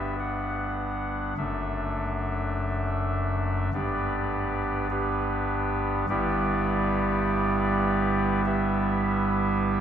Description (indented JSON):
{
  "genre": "classical, chorale-style piece for pipe organ",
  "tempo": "51 BPM",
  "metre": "4/4",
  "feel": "straight",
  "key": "unclear",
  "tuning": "A4 = 442 Hz",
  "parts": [
    { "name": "pipe organ, soft reed", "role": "solo", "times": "0.0-9.8 s", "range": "F#1 to F#5", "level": "-24 LUFS", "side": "equal", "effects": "none" }
  ],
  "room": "wet cathedral reverb, RT60 6.6 s",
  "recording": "in a vast, echoing space",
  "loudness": "-24 LUFS",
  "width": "side -9 dB against mid",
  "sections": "0.0-9.8 A section",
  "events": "none",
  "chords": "0.0 G; 1.4 D/F#; 3.7 G; 6.1 Em/G"
}